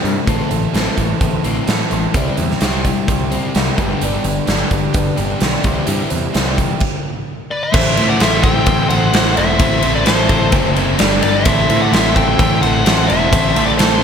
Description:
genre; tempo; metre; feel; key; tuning
classic rock; 129 BPM; 4/4; straight; A minor; A4 = 441 Hz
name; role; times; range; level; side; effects
picked acoustic archtop guitar; accompaniment; 0.0-14.0 s; A2 to D5; -28 LUFS; left 3 dB; none
overdriven electric guitar; riff; 0.0-14.0 s; G2 to D5; -23 LUFS; right 10 dB; slapback echo
sludgy distorted guitar; riff; 0.0-14.0 s; G2 to D5; -22 LUFS; left 9 dB; overdrive
growling picked electric bass; bass; 0.0-14.0 s; E1 to A2; -20 LUFS; equal; overdrive
big rock drum kit; drums; 0.1-13.9 s; crash cymbal, hi-hat, kick drum, ride cymbal, snare drum; -17 LUFS; equal; none
bluesy overdriven lead guitar; melody; 7.5-14.0 s; C5 to G5; -19 LUFS; left 3 dB; distortion, slapback echo
octave-fuzz lead guitar; second line; 7.5-14.0 s; A4 to E5; -24 LUFS; right 2 dB; distortion, slapback echo
string machine, full ensemble; sustained chords; 7.7-14.0 s; none; barely audible; none; none
crunchy overdriven guitar; riff; 7.7-14.0 s; A2 to D5; -23 LUFS; equal; none
room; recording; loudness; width
moderate lush hall reverb, RT60 2.2 s; big arena sound; -13 LUFS; side -7 dB against mid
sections
0.0-7.7 A section; 7.7-14.0 B section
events
stop 6.8-7.7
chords
0.3 Amadd9; 2.1 C; 3.8 G; 5.6 C; 7.7 Am; 11.0 G5; 11.5 Am

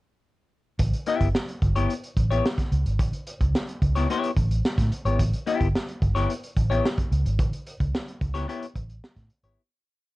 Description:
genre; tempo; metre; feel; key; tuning
funk; 109 BPM; 4/4; straight; A mixolydian; A4 = 440 Hz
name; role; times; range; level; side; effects
vintage muted fingered electric bass; bass; 0.8-9.6 s; G1 to A2; -24 LUFS; equal; none
crunchy breakbeat drum kit; drums; 0.8-9.6 s; hi-hat, kick drum, snare drum; -26 LUFS; equal; vintage 12-bit sampler grit
semi-hollow electric guitar; accompaniment; 1.1-9.6 s; B3 to E5; -26 LUFS; left 5 dB; phaser
room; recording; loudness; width
light reverb; none; -22 LUFS; side -18 dB against mid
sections
0.8-9.6 breakdown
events
fade-out 7.4-9.6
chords
0.8 A9

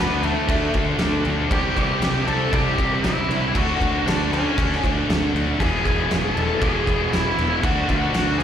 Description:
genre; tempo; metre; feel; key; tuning
quiet-loud alternative rock; 118 BPM; 4/4; straight; unclear; A4 = 440 Hz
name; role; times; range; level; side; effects
octave-fuzz lead guitar; melody; 0.0-8.4 s; A3 to A5; -24 LUFS; left 1 dB; distortion, slapback echo
distorted electric guitar; riff; 0.0-8.4 s; E2 to D4; -27 LUFS; left 1 dB; overdrive
high-gain distorted guitar; riff; 0.0-8.4 s; C3 to G4; -30 LUFS; left 12 dB; distortion, slapback echo
thick fuzz guitar; riff; 0.0-8.4 s; E2 to D4; -30 LUFS; right 10 dB; distortion
fuzz picked electric bass; bass; 0.0-8.4 s; E1 to D2; -25 LUFS; equal; overdrive
oversized low-tuned drum kit; drums; 0.2-8.4 s; crash cymbal, kick drum, snare drum; -24 LUFS; equal; none
room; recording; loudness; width
little or no reverb; live gig heard through the venue's PA, recital hall reverb; -18 LUFS; side -9 dB against mid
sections
0.0-8.4 A section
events
none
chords
0.0 D; 1.5 C; 3.5 D; 5.6 E; 7.6 D

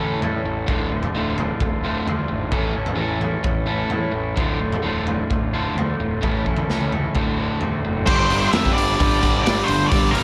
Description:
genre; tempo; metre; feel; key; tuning
quiet-loud alternative rock; 130 BPM; 4/4; straight; D harmonic minor; A4 = 440 Hz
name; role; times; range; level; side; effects
electric guitar through a small old amp; arpeggios; 0.0-8.1 s; D2 to A4; -29 LUFS; equal; digital delay
overdriven electric guitar; riff; 0.0-10.2 s; D2 to A3; -28 LUFS; equal; none
fuzz picked electric bass; bass; 0.0-10.2 s; D1 to A2; -29 LUFS; equal; overdrive
raw garage drum kit; drums; 0.2-10.2 s; crash cymbal, hi-hat, kick drum, snare drum, toms; -26 LUFS; equal; none
octave-fuzz lead guitar; melody; 8.1-10.2 s; Bb4 to E5; -24 LUFS; equal; distortion
distorted electric guitar; riff; 8.1-10.2 s; G2 to G4; -29 LUFS; equal; none
thick fuzz guitar; riff; 8.1-10.2 s; G2 to G3; -30 LUFS; equal; none
room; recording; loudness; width
light reverb, small room ambience; none; -21 LUFS; mono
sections
0.0-8.1 A section; 8.1-10.2 B section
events
none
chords
0.0 A; 0.7 Dm; 2.5 A; 4.4 Dm; 6.2 A; 7.2 D7; 8.1 Gsus4

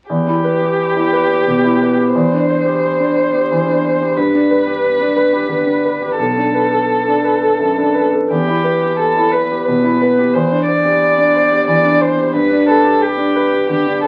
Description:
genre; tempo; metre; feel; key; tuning
neoclassical piano and strings; 88 BPM; 3/4; rubato; E minor; A4 = 441 Hz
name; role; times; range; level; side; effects
dark violin; melody; 0.1-14.1 s; G4 to D5; -18 LUFS; equal; none
warm concert grand piano; accompaniment; 0.1-14.1 s; B1 to C5; -17 LUFS; equal; none
room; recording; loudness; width
wet studio ambience, RT60 0.5 s; very old 78 rpm record, vinyl crackle; -14 LUFS; mono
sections
0.1-14.1 A section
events
none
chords
0.1 Em; 2.1 Cadd9/E; 4.2 G; 6.2 Bm7; 8.3 Em; 10.3 Cadd9/E; 12.3 G

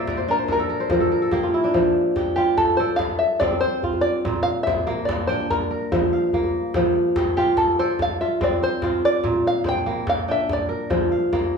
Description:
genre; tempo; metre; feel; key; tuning
west african traditional, West African string and xylophone music; 96 BPM (dotted quarters); 12/8; straight; unclear; A4 = 440 Hz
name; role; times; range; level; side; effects
open-back banjo; melody; 0.0-11.5 s; G4 to G5; -22 LUFS; equal; none
kora; arpeggios; 0.0-11.6 s; Bb2 to G5; -21 LUFS; equal; none
djembe; percussion; 0.1-11.5 s; none; -28 LUFS; left 1 dB; none
room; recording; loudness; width
wet large studio reverb, RT60 0.9 s; band playing live in one room, small room reverb; -19 LUFS; side -5 dB against mid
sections
0.0-11.6 A section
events
kora fill 0.0-1.7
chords
0.0 Bb; 1.7 F; 4.2 Bb; 6.7 F; 9.2 Bb

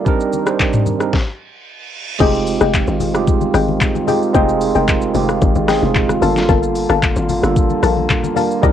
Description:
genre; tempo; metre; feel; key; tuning
amapiano; 112 BPM; 4/4; straight; F dorian; A4 = 440 Hz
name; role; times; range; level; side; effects
tine electric piano; accompaniment; 0.0-8.7 s; G3 to C5; -18 LUFS; right 8 dB; cassette tape
mellow French horn section; sustained chords; 0.0-8.7 s; D3 to D5; -23 LUFS; left 2 dB; cassette tape
smooth R&B drum kit; drums; 0.1-8.7 s; crash cymbal, handclaps, hi-hat, kick drum, rim click, shaker, snare drum, toms; -18 LUFS; left 2 dB; cassette tape
congas; percussion; 0.3-8.5 s; none; -26 LUFS; left 11 dB; none
reverse cymbal; sound effects; 1.4-2.2 s; none; -29 LUFS; right 6 dB; none
soft round pluck; stabs; 2.2-8.7 s; Ab4 to Bb5; -20 LUFS; left 12 dB; chorus, cassette tape, analog delay
hollow log drum bass; bass; 2.2-8.7 s; F1 to C2; -19 LUFS; left 1 dB; none
room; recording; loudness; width
little or no reverb; home recording on cassette; -13 LUFS; side -10 dB against mid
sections
0.0-2.2 A section; 2.2-8.7 B section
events
stop 1.1-2.2; reverse cymbal 1.4-2.2; drop 2.2-8.7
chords
0.1 Cm9; 2.2 Fm9; 6.2 Gm9

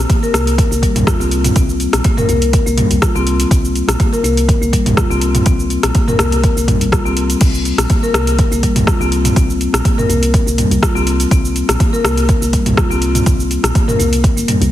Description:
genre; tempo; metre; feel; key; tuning
afro house; 123 BPM; 4/4; swing 54% on 16ths; unclear; A4 = 441 Hz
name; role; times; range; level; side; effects
woody FM bass; bass; 0.0-14.7 s; G1 to C2; -18 LUFS; equal; sidechain pumping
marimba with soft mallets; arpeggios; 0.1-14.6 s; G3 to Bb4; -17 LUFS; left 2 dB; sidechain pumping, digital delay
deep house drum kit; drums; 0.1-14.7 s; cabasa, crash cymbal, hi-hat, rim click, toms; -17 LUFS; equal; overdrive
electronic kick drum; drums; 0.1-14.3 s; none; -14 LUFS; equal; overdrive
room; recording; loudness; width
light reverb, digital ambience; heavily compressed radio sound, multiband compression; -11 LUFS; side -13 dB against mid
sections
0.0-14.7 A section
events
none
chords
0.0 N.C.; 7.4 C5

